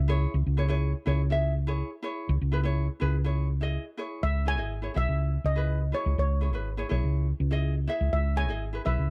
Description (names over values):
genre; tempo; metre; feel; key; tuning
calypso; 123 BPM; 4/4; straight; C# minor; A4 = 441 Hz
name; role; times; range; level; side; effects
hollow-body short-scale fingered electric bass; bass; 0.0-9.1 s; G#1 to C#2; -28 LUFS; equal; none
ukulele; accompaniment; 0.1-9.1 s; E4 to E5; -36 LUFS; equal; none
steel pan; melody; 4.2-9.1 s; C#5 to G#5; -35 LUFS; equal; none
room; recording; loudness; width
small room reverb; dry, close 1970s-style studio recording; -28 LUFS; mono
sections
0.3-4.2 A section; 4.2-9.1 B section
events
none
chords
0.3 C#m; 4.2 C#m7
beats
| 0.33 0.82 1.30 1.79 | 2.27 2.76 3.25 3.74 | 4.22 4.71 5.20 5.69 | 6.17 6.66 7.15 7.64 | 8.13 8.62